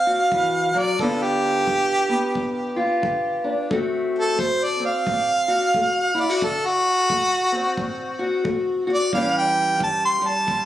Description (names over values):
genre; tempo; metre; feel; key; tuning
acoustic country blues, solo or duo; 89 BPM; 4/4; swing 61% on 8ths; D mixolydian; A4 = 439 Hz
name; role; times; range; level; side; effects
clear harmonica; melody; 0.0-10.6 s; F#4 to C6; -20 LUFS; right 1 dB; tape echo
fingerpicked steel-string acoustic guitar; accompaniment; 0.0-10.7 s; E2 to G4; -24 LUFS; left 1 dB; none
kick drum; drums; 0.3-10.7 s; none; -34 LUFS; left 1 dB; none
room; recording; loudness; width
light reverb; recorded on a phone in the room, studio ambience, compression; -19 LUFS; side -13 dB against mid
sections
0.0-10.7 A section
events
harmonica solo 0.0-10.7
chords
0.0 D7; 1.0 G7; 3.7 D7; 9.1 A7